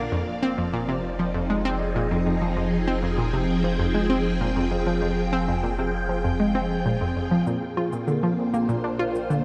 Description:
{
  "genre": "ambient, sequencer-driven space music",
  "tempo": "98 BPM",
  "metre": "4/4",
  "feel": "straight",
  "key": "F dorian",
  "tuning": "A4 = 440 Hz",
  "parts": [
    { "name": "phased string machine", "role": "sustained chords", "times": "0.0-9.4 s", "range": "Bb2 to G5", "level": "-28 LUFS", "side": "equal", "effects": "ensemble chorus, phaser" },
    { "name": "analog pluck", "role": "riff", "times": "0.0-9.4 s", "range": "F2 to F4", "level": "-28 LUFS", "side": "equal", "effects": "chorus, tape echo" },
    { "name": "warm sub bass", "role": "bass", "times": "0.0-9.4 s", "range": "F1 to Bb1", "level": "-33 LUFS", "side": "equal", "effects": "none" },
    { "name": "cabasa and woodblock", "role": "percussion", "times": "7.5-9.4 s", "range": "none", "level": "-58 LUFS", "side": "equal", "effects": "tape echo" }
  ],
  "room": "moderate plate reverb, RT60 2.9 s",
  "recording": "dark, warm production",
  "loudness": "-24 LUFS",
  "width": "mono",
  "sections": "0.0-7.5 A section; 7.5-9.4 A section",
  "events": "none",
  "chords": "0.1 Fm7; 7.5 Bbadd9"
}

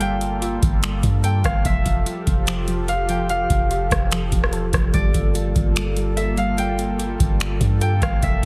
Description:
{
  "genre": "hip hop, atmospheric cloud-rap",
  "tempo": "146 BPM",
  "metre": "4/4",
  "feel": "half-time",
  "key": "G dorian",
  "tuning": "A4 = 440 Hz",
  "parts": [
    { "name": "concert harp", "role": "melody", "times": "0.0-8.5 s", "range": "D5 to G5", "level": "-29 LUFS", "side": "equal", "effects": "tape echo" },
    { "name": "warbly tape-like pad", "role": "sustained chords", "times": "0.0-8.5 s", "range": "F3 to A4", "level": "-30 LUFS", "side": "equal", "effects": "chorus, built-in reverb, phaser, sidechain pumping" },
    { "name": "soft round pluck", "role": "arpeggios", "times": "0.0-8.5 s", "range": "F3 to A4", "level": "-33 LUFS", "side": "equal", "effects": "chorus, tape echo" },
    { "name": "soft 808-style bass", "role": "bass", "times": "0.0-8.5 s", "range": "E1 to G2", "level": "-24 LUFS", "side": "equal", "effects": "none" },
    { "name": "booming analog drum machine", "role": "drums", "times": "0.0-8.5 s", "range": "finger snaps, hi-hat, kick drum, rim click", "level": "-24 LUFS", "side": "equal", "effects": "none" }
  ],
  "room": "little or no reverb",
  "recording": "heavily compressed radio sound, lossy compression artefacts",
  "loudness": "-20 LUFS",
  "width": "mono",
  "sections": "0.0-8.5 A section",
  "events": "none",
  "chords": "0.0 Gm9; 1.6 Fmaj9; 4.9 Gm9"
}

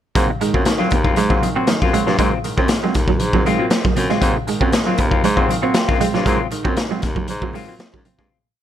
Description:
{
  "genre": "funk",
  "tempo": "118 BPM",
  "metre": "4/4",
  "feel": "straight",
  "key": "Ab mixolydian",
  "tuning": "A4 = 438 Hz",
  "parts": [
    { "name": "mellow clav", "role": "stabs", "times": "0.2-8.2 s", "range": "Ab2 to F4", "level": "-24 LUFS", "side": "right 2 dB", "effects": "phaser" },
    { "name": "clear baritone saxophone", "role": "bass", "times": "0.2-8.3 s", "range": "Eb2 to Ab2", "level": "-22 LUFS", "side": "equal", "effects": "none" },
    { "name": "raw garage drum kit", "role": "drums", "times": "0.2-8.3 s", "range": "hi-hat, kick drum, snare drum", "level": "-19 LUFS", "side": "left 1 dB", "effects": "none" },
    { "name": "congas", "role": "percussion", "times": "0.2-8.3 s", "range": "none", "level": "-27 LUFS", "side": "right 6 dB", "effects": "none" },
    { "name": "clean electric guitar", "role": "riff", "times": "0.3-8.3 s", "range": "Gb3 to C4", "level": "-24 LUFS", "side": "right 8 dB", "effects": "ensemble chorus" },
    { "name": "semi-hollow electric guitar", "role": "accompaniment", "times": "0.8-8.4 s", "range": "Gb3 to Gb4", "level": "-23 LUFS", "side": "left 9 dB", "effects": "none" }
  ],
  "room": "light reverb, small room ambience",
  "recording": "none",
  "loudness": "-15 LUFS",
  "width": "side -10 dB against mid",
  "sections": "0.2-8.3 A section",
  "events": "fade-out 6.3-8.3",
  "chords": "0.2 Ab13"
}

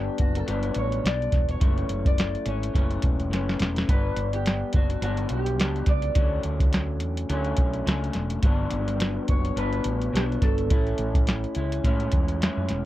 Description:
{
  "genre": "indie pop, bedroom pop",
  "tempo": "106 BPM",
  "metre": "4/4",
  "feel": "swing 55% on 16ths",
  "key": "unclear",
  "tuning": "A4 = 440 Hz",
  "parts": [
    { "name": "electric guitar through a small old amp", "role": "melody", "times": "0.0-12.1 s", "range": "F#4 to D5", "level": "-33 LUFS", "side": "right 2 dB", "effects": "wide subtle chorus, analog delay" },
    { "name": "electric guitar through a small old amp", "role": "accompaniment", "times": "0.0-12.9 s", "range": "F#2 to E4", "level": "-29 LUFS", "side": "left 2 dB", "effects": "lush chorus, vibrato effect" },
    { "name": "woody fretless electric bass", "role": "bass", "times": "0.0-12.9 s", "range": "E1 to A2", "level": "-28 LUFS", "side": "equal", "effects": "none" },
    { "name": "soft vintage rhythm box", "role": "drums", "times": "0.2-12.8 s", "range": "hi-hat, kick drum, snare drum", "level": "-23 LUFS", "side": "equal", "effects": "none" }
  ],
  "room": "little or no reverb",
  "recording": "dark, warm production",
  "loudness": "-22 LUFS",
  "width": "side -15 dB against mid",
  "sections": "0.0-12.9 A section",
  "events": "drum fill 3.3-3.9",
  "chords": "0.0 Gmaj7; 1.6 F#m7; 3.9 Gmaj7; 6.2 Dmaj7; 8.4 Gmaj7; 10.7 Amaj7"
}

